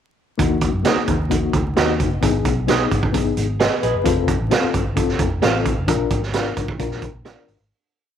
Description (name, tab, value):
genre	uptempo 1960s-style soul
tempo	131 BPM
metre	4/4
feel	straight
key	Eb harmonic minor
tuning	A4 = 441 Hz
part	mellow reed electric piano	accompaniment	0.4-7.6 s	Bb3 to Eb5	-22 LUFS	left 9 dB	fast tremolo
part	vintage muted fingered electric bass	bass	0.4-7.7 s	F1 to Gb2	-24 LUFS	equal	none
part	raw garage drum kit	drums	0.4-7.6 s	hi-hat, kick drum, snare drum	-20 LUFS	right 3 dB	none
part	electric guitar through a small old amp	stabs	0.8-7.4 s	Gb4 to F5	-27 LUFS	right 6 dB	phaser
room	light reverb, small room ambience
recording	1960s-style stereo with parts hard left and right, vinyl crackle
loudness	-17 LUFS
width	side -9 dB against mid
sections	0.4-7.7 verse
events	fade-out 5.9-7.7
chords	0.4 Ebm; 2.2 Abm; 4.1 F; 5.9 Bb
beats	| 0.39 0.85 1.31 1.77 | 2.23 2.68 3.14 3.60 | 4.05 4.51 4.97 5.43 | 5.88 6.34 6.80 7.26